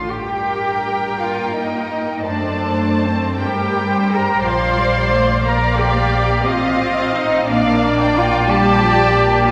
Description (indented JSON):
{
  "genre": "classical, slow romantic movement for string orchestra",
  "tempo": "51-61 BPM (dotted quarters)",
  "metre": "6/8",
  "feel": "rubato",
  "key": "G minor",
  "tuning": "A4 = 444 Hz",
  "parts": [
    { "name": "muted studio violin section", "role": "melody", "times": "0.0-9.5 s", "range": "C5 to C6", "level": "-27 LUFS", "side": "equal", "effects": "none" },
    { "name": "muted studio viola section", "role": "accompaniment", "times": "0.0-9.5 s", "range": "F3 to C4", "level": "-24 LUFS", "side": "equal", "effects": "none" },
    { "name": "muted studio cello section", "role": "bass", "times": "0.0-9.5 s", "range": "C4 to C5", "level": "-22 LUFS", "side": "equal", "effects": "none" },
    { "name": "muted studio violin section", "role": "second line", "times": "0.1-9.5 s", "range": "Bb4 to A5", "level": "-23 LUFS", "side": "equal", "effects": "none" },
    { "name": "muted studio double bass section", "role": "bass", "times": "0.1-9.5 s", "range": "A1 to G2", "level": "-25 LUFS", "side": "equal", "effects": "none" }
  ],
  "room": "wet church reverb, RT60 3.8 s",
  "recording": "recorded in a church or concert hall",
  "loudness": "-17 LUFS",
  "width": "mono",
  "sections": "0.1-9.5 A section",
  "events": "none",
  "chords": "0.1 Gm; 2.3 D7/F#; 3.4 Gm; 4.4 Bb; 6.5 F7/A; 7.5 Bb; 8.5 Bbmaj7",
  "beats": "| 0.10 1.20 | 2.26 3.39 | 4.45 5.46 | 6.47 7.50 | 8.49 9.48"
}